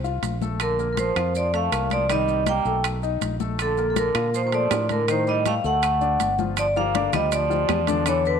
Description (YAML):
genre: Afro-Cuban jazz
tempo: 161 BPM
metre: 4/4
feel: straight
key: Bb major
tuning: A4 = 440 Hz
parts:
  - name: warm grand piano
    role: accompaniment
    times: 0.0-8.4 s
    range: D3 to F5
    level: -29 LUFS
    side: left 11 dB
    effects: none
  - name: fingered electric bass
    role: bass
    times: 0.0-8.4 s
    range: G1 to Bb2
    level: -27 LUFS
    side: right 1 dB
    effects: none
  - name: congas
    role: percussion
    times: 0.0-8.4 s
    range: none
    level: -32 LUFS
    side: left 10 dB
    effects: none
  - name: maracas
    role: percussion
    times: 0.0-8.4 s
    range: none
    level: -38 LUFS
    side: right 17 dB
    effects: none
  - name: timbales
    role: percussion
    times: 0.2-8.2 s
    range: none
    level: -30 LUFS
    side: right 14 dB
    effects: none
  - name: vibraphone with medium hard mallets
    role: melody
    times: 0.6-8.4 s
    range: A4 to G5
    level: -23 LUFS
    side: equal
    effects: none
  - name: trombone with metal mute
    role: second line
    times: 0.6-8.4 s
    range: C3 to Bb3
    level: -30 LUFS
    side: right 12 dB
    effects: none
  - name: claves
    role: percussion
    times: 0.6-8.3 s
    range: none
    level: -36 LUFS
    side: left 13 dB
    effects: none
room: moderate echo chamber reverb, RT60 2.1 s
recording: 1960s-style stereo with parts hard left and right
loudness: -20 LUFS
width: side -7 dB against mid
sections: 0.0-6.6 A section; 6.6-8.4 B section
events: none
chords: 0.0 F; 2.1 Cm7; 2.8 B7; 3.6 Bbmaj7; 5.1 F13 (rootless); 5.8 D; 6.6 Gm7